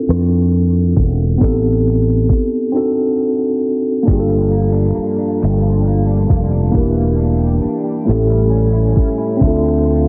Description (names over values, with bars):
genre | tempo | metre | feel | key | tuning
slow six-eight R&B | 45 BPM (dotted quarters) | 6/8 | straight | unclear | A4 = 440 Hz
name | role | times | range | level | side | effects
tine electric piano | accompaniment | 0.0-10.1 s | A3 to E5 | -19 LUFS | equal | none
fretless electric bass | bass | 0.1-10.1 s | E1 to F2 | -17 LUFS | equal | none
smooth R&B drum kit | drums | 0.1-10.1 s | handclaps, hi-hat, kick drum, rim click | -18 LUFS | equal | none
electric guitar at the edge of break-up | second line | 4.1-10.1 s | G2 to G4 | -24 LUFS | equal | analog chorus
room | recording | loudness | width
light reverb, digital ambience | heavily compressed radio sound, multiband compression, low-pass filter, nothing above 7.7 kHz | -15 LUFS | mono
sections
0.0-10.1 A section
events
filter sweep 0.0-10.1; break 2.7-4.1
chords
0.0 Dm7; 1.4 Am7b5; 2.7 D7b9; 4.1 Gm7; 6.7 Em7b5; 8.1 A7; 9.4 Dm7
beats
0.07 | 1.41 2.74 | 4.08 5.41 | 6.74 8.07 | 9.41